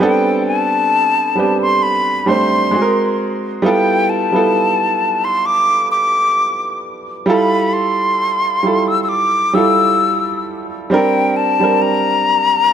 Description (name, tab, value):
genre	R&B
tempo	66 BPM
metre	4/4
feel	swing 54% on 16ths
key	unclear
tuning	A4 = 440 Hz
part	breathy concert flute	melody	0.0-12.7 s	G5 to E6	-15 LUFS	left 2 dB	digital delay
part	clear baby grand piano	accompaniment	0.0-12.7 s	G3 to C5	-16 LUFS	right 3 dB	none
room	light reverb, small room ambience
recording	none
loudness	-13 LUFS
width	side -8 dB against mid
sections	0.0-12.7 A section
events	none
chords	0.0 Am11; 2.7 G#9; 3.6 G13; 7.3 Fmaj9; 10.9 Bb69